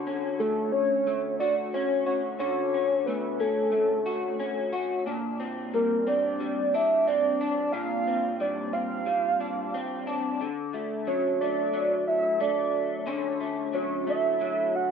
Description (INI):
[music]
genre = indie pop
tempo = 90 BPM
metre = 4/4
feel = straight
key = D major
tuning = A4 = 436 Hz
[part]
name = electric guitar through a small old amp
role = accompaniment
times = 0.0-14.9 s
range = Bb2 to F#4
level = -30 LUFS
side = left 3 dB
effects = analog chorus, warbly pitch drift, plate reverb
[part]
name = soft octave-layered synth lead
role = melody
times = 0.4-14.9 s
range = A4 to F#5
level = -25 LUFS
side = right 1 dB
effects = lush chorus, plate reverb
[sound]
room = wet studio reverb, RT60 0.7 s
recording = dark, warm production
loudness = -25 LUFS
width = side -6 dB against mid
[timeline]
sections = 0.0-14.9 A section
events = none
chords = 0.0 Dmaj7; 5.1 Bb69; 10.4 Dmaj7